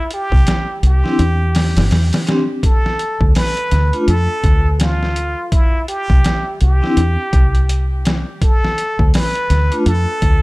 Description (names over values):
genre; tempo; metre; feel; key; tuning
trip hop; 83 BPM; 4/4; swing 60% on 16ths; D dorian; A4 = 439 Hz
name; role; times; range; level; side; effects
trumpet with plunger mute; melody; 0.0-10.4 s; E4 to B4; -21 LUFS; equal; tape echo
trip hop sampler-style drum kit; drums; 0.1-10.4 s; hi-hat, kick drum, snare drum; -16 LUFS; equal; overdrive, small room ambience
deep dub fingered electric bass; bass; 0.3-10.4 s; G1 to F2; -14 LUFS; equal; none
vibraphone with medium hard mallets; accompaniment; 1.0-9.8 s; A3 to G4; -21 LUFS; left 1 dB; tremolo
room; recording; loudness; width
small room reverb; none; -13 LUFS; side -21 dB against mid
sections
0.0-10.4 A section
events
none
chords
0.0 Cadd9; 2.6 Dm; 5.5 C5; 8.4 Dm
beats
0.47 1.19 1.91 | 2.63 3.36 4.08 4.80 | 5.53 6.25 6.97 7.69 | 8.42 9.14 9.86